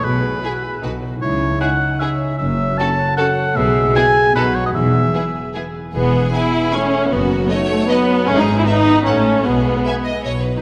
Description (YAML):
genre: cinematic, playful, whimsical film cue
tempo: 153 BPM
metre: 3/4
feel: straight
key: E major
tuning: A4 = 441 Hz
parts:
  - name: clear oboe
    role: second line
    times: 0.0-5.5 s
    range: B4 to A5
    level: -22 LUFS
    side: equal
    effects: none
  - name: dark French horn section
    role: sustained chords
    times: 0.0-10.2 s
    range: F#3 to B4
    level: -26 LUFS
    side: equal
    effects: none
  - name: concert harp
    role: arpeggios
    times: 0.0-10.6 s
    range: F#2 to B5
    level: -27 LUFS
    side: equal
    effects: none
  - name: dark chamber cello section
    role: bass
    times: 0.0-10.6 s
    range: E2 to C#3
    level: -27 LUFS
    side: equal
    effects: none
  - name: warm chamber double bass section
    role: bass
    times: 0.0-10.6 s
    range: E1 to C#2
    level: -25 LUFS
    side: equal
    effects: none
  - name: rich chamber violin section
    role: melody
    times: 0.4-10.3 s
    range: G#4 to G#5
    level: -32 LUFS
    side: equal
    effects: none
  - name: rich chamber violin section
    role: second line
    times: 0.4-10.6 s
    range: D#4 to E5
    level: -29 LUFS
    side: equal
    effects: none
  - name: warm chamber viola section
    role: accompaniment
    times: 0.4-10.6 s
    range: A3 to E4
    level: -20 LUFS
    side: equal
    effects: none
room: wet scoring stage reverb, RT60 1.8 s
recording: none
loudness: -17 LUFS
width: mono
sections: 0.0-5.9 A section; 5.9-10.6 A section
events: none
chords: 0.0 E/B; 0.8 B; 1.2 C#m; 2.4 F#m7; 3.6 E/B; 4.4 B; 4.8 E; 7.1 B7/F#; 8.3 E/G#; 9.1 F#m/A; 9.5 E/B